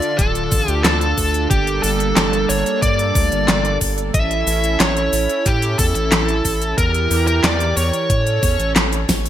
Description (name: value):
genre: synthwave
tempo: 91 BPM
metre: 4/4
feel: straight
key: unclear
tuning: A4 = 440 Hz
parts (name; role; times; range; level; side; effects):
- smooth overdriven lead guitar; melody; 0.0-8.7 s; G4 to E5; -20 LUFS; equal; ping-pong delay
- brassy analog pad; sustained chords; 0.0-9.3 s; D3 to Bb4; -23 LUFS; right 3 dB; chorus, sidechain pumping
- pop drum kit; drums; 0.0-9.3 s; cabasa, handclaps, hi-hat, snare drum; -20 LUFS; equal; gated reverb
- round analog bass; bass; 0.2-9.3 s; D1 to A2; -21 LUFS; equal; none
- electronic kick drum; drums; 0.2-9.2 s; none; -20 LUFS; equal; none
room: light reverb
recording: bright 1980s-style digital production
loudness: -15 LUFS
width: side -11 dB against mid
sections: 0.0-9.3 A section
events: drum fill 9.1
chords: 0.0 Dm; 1.5 Gmadd9; 4.1 A; 6.8 Edim; 8.1 A